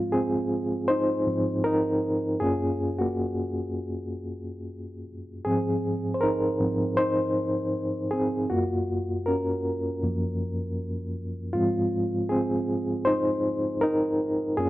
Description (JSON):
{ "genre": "soul", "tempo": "79 BPM", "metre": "4/4", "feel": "swing 54% on 16ths", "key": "Ab mixolydian", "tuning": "A4 = 441 Hz", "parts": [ { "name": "reed electric piano", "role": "solo", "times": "0.0-14.7 s", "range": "Gb2 to C5", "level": "-24 LUFS", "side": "equal", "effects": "fast tremolo" } ], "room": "light reverb, digital ambience", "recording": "none", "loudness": "-24 LUFS", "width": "side -16 dB against mid", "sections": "0.0-14.7 A section", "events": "reed electric piano solo 0.0-14.7", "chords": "0.0 Ab6; 2.4 Gbmaj7; 5.5 Ab6; 8.5 Gbmaj7; 11.6 Ab6" }